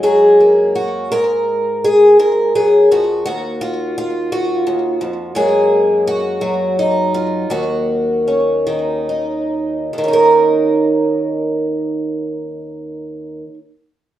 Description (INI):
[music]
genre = folk, solo fingerstyle acoustic guitar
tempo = 46-58 BPM (dotted quarters)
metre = 6/8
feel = rubato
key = Eb minor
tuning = A4 = 439 Hz
[part]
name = picked twelve-string acoustic guitar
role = solo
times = 0.0-13.6 s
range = Eb2 to Bb4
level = -13 LUFS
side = equal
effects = slapback echo
[sound]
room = wet studio reverb, RT60 0.7 s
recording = rough home demo mix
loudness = -13 LUFS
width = side -12 dB against mid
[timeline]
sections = 0.0-9.9 A section; 9.9-14.2 B section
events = slowing down 5.4-9.9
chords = 0.0 Gbadd9; 1.1 Fmadd11; 3.3 Ebmadd9; 5.4 Gbadd9; 7.5 Ebm7